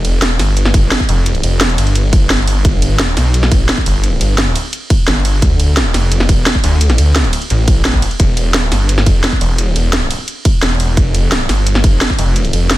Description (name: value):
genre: dark technical drum and bass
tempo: 173 BPM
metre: 4/4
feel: straight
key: unclear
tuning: A4 = 440 Hz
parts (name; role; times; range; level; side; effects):
- snarling distorted saw bass; bass; 0.0-12.8 s; E1 to D2; -14 LUFS; equal; distortion, overdrive
- drum and bass drum kit; drums; 0.0-12.8 s; hi-hat, ride cymbal, snare drum; -16 LUFS; equal; studio reverb
- electronic kick drum; drums; 0.7-12.2 s; none; -14 LUFS; equal; studio reverb
room: little or no reverb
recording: dense, heavily limited modern master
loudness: -11 LUFS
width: side -16 dB against mid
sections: 0.0-12.8 A section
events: none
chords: none